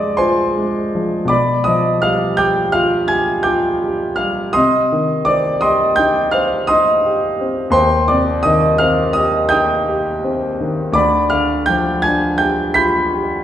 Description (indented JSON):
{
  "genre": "classical, romantic nocturne for solo piano",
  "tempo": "56 BPM (dotted quarters)",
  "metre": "9/8",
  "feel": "rubato",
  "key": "C minor",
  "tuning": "A4 = 441 Hz",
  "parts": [
    { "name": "warm concert grand piano", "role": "solo", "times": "0.0-13.4 s", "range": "D2 to B6", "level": "-13 LUFS", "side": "equal", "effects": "none" }
  ],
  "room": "wet recital hall reverb, RT60 1.6 s",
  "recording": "heard from further back in the room",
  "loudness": "-13 LUFS",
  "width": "side -10 dB against mid",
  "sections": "0.0-13.4 A section",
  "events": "none",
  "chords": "0.0 Dm7b5/C; 1.3 G7/B; 4.6 Cm; 7.7 Cm/Eb; 11.0 G7/D"
}